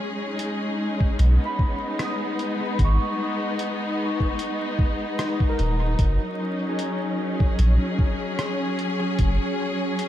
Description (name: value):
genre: ambient dub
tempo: 75 BPM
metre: 4/4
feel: swing 54% on 16ths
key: G# minor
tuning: A4 = 440 Hz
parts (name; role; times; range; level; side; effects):
- rich studio string section; sustained chords; 0.0-10.1 s; F#3 to G#4; -26 LUFS; left 1 dB; none
- lo-fi sampler-style drum kit; drums; 0.4-10.1 s; hi-hat, rim click; -35 LUFS; equal; dub echo
- electronic kick drum; drums; 1.0-9.4 s; none; -22 LUFS; equal; none
- soft dub sub bass; bass; 1.2-9.4 s; D#1 to B1; -19 LUFS; equal; none
- Celtic harp; arpeggios; 1.4-9.3 s; G#4 to D#6; -34 LUFS; equal; vintage 12-bit sampler grit, ping-pong delay
room: light reverb, digital ambience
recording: vinyl crackle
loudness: -21 LUFS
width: side -12 dB against mid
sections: 0.0-10.1 A section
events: none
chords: 0.0 G#m; 6.0 F#